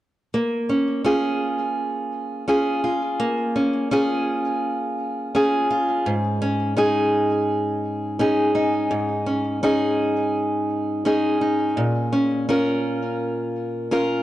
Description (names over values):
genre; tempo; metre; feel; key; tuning
folktronica; 84 BPM; 4/4; straight; Bb minor; A4 = 440 Hz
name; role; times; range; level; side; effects
fingerpicked old ladder-braced acoustic guitar; solo; 0.3-14.2 s; Ab2 to Bb4; -20 LUFS; equal; none
room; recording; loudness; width
light reverb; none; -20 LUFS; side -14 dB against mid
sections
0.3-14.2 A section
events
none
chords
0.3 Bbm7; 6.1 Absus4; 11.8 Bbm